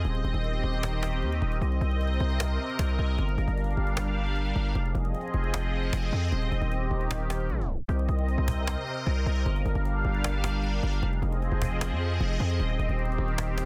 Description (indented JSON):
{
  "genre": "hip hop, trap",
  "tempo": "153 BPM",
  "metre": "4/4",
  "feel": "half-time",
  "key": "C minor",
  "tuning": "A4 = 440 Hz",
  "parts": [
    { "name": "sweeping resonant pad", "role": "sustained chords", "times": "0.0-13.7 s", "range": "C3 to F5", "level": "-34 LUFS", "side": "equal", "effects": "chorus" },
    { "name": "distorted 808-style bass", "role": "bass", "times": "0.0-13.7 s", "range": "Eb1 to F2", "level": "-30 LUFS", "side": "equal", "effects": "distortion" },
    { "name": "cajon", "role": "drums", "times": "0.0-13.7 s", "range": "none", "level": "-39 LUFS", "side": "equal", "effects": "none" }
  ],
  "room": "studio ambience",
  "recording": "dense, heavily limited modern master, tape stop",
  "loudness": "-28 LUFS",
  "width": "mono",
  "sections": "0.0-7.9 A section; 7.9-13.7 B section",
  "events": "tape stop 7.5-7.9",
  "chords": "0.0 Eb6; 1.6 Cm7; 3.2 Gm7; 4.8 Fm7; 6.3 Eb6; 7.9 Cm7; 9.5 Gm7; 11.0 Fm7; 12.6 Eb6"
}